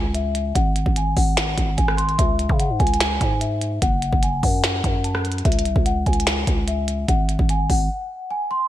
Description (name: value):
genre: hip hop, trap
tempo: 147 BPM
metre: 4/4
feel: half-time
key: C# harmonic minor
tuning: A4 = 441 Hz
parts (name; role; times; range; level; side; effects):
- large celesta; melody; 0.0-8.7 s; E5 to B#5; -25 LUFS; left 2 dB; ping-pong delay
- growling 808-style bass; bass; 0.0-7.9 s; F#1 to C#3; -23 LUFS; equal; none
- minimal click drum kit; drums; 0.1-7.8 s; hi-hat, kick drum, rim click, snare drum; -21 LUFS; equal; gated reverb
room: light reverb, digital ambience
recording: bright 1980s-style digital production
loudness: -18 LUFS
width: side -13 dB against mid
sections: 0.0-8.7 A section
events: break 7.9-8.7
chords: 0.0 C#m; 0.6 G#7(no3); 2.2 C#m; 3.8 F#m; 5.5 C#m; 7.1 G#7(no3)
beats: 0.15 | 0.56 0.96 1.37 1.78 | 2.19 2.60 3.00 3.41 | 3.82 4.23 4.64 5.04 | 5.45 5.86 6.27 6.68 | 7.08 7.49 7.90 8.31